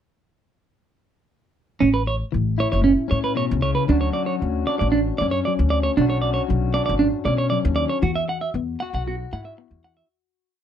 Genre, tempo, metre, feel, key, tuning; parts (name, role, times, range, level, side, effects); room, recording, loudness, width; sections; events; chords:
highlife; 116 BPM; 4/4; straight; A major; A4 = 438 Hz
electric guitar at the edge of break-up; accompaniment; 1.8-10.6 s; F#2 to F#4; -26 LUFS; left 11 dB; warbly pitch drift
clean electric guitar; arpeggios; 1.8-10.0 s; C#4 to F#5; -22 LUFS; right 5 dB; slapback echo
upright bass; bass; 1.8-10.0 s; F#1 to B2; -23 LUFS; equal
light reverb; dry, close 1970s-style studio recording; -19 LUFS; side -9 dB against mid
1.8-10.1 groove
fade-out 8.0-10.1
1.8 Aadd9; 3.9 Dmaj7; 6.0 Bmadd9; 8.0 Esus2